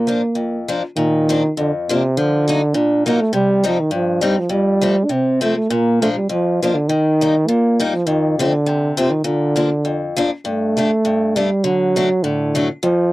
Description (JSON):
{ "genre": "alpine folk, alpine dance band", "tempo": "101 BPM", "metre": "2/4", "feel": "swing 54% on 8ths", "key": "Bb major", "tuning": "A4 = 439 Hz", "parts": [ { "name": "mellow euphonium", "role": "melody", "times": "0.0-13.1 s", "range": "C3 to D4", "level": "-16 LUFS", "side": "right 1 dB", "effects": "none" }, { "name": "picked steel-string acoustic guitar", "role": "accompaniment", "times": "0.0-13.1 s", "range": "F2 to Eb4", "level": "-20 LUFS", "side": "left 3 dB", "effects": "none" } ], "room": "light reverb", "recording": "dry, close 1970s-style studio recording", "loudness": "-15 LUFS", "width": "side -18 dB against mid", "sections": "1.0-10.4 A section; 10.4-13.1 B section", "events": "none", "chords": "0.0 Bb; 2.2 Ebmadd9; 3.3 Cm; 4.5 F; 5.7 Bb; 6.9 Eb; 8.1 F; 9.2 Bb; 10.4 Gsus2; 11.6 D" }